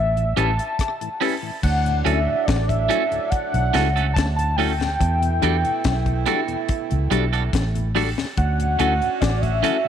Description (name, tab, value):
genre	lovers rock reggae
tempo	71 BPM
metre	4/4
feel	straight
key	D major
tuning	A4 = 440 Hz
part	warm velvety synth lead	melody	0.0-9.9 s	D5 to A5	-24 LUFS	equal	chorus, tape echo
part	vintage muted fingered electric bass	bass	0.0-9.6 s	A1 to E2	-22 LUFS	equal	none
part	mellow tonewheel organ	accompaniment	0.2-9.9 s	D2 to G4	-32 LUFS	left 10 dB	slow rotary speaker
part	deep reggae drum kit	drums	0.2-9.8 s	crash cymbal, hi-hat, kick drum, rim click, snare drum	-25 LUFS	left 2 dB	slapback echo
part	mellow tine electric piano	accompaniment	0.4-9.8 s	C#4 to B4	-28 LUFS	left 12 dB	medium stereo tremolo
part	twangy electric guitar	stabs	0.4-9.8 s	G3 to A4	-26 LUFS	right 12 dB	spring reverb
part	mellow saxophone section	second line	1.6-9.9 s	A2 to F#4	-30 LUFS	right 15 dB	none
room	light reverb, small room ambience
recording	1960s-style stereo with parts hard left and right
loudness	-18 LUFS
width	side -9 dB against mid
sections	0.0-1.6 A section; 1.6-9.9 B section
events	none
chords	0.0 A7; 1.6 Dmaj7; 5.0 Em11; 8.4 Dmaj7